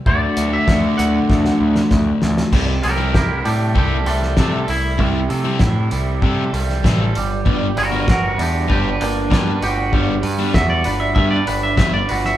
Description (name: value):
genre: indie rock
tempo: 97 BPM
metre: 4/4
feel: straight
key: unclear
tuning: A4 = 440 Hz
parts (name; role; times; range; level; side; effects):
- overdriven electric guitar; riff; 0.0-12.4 s; C3 to B4; -22 LUFS; right 4 dB; none
- sludgy distorted guitar; riff; 0.0-12.0 s; C3 to E4; -23 LUFS; left 4 dB; overdrive
- twangy electric guitar; melody; 0.1-12.4 s; A3 to F#5; -22 LUFS; equal; none
- growling picked electric bass; bass; 0.1-12.4 s; G1 to C3; -21 LUFS; equal; overdrive
- cloth-damped thuddy drum kit; drums; 0.1-12.3 s; crash cymbal, hi-hat, kick drum, snare drum; -20 LUFS; equal; none
room: moderate large studio reverb, RT60 1.1 s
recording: band playing live in one room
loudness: -15 LUFS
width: side -13 dB against mid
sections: 0.0-2.5 A section; 2.5-12.4 B section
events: drum fill 1.3-2.5; clean electric guitar solo 2.5-12.4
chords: 0.1 D; 2.5 C6; 7.2 Gmaj7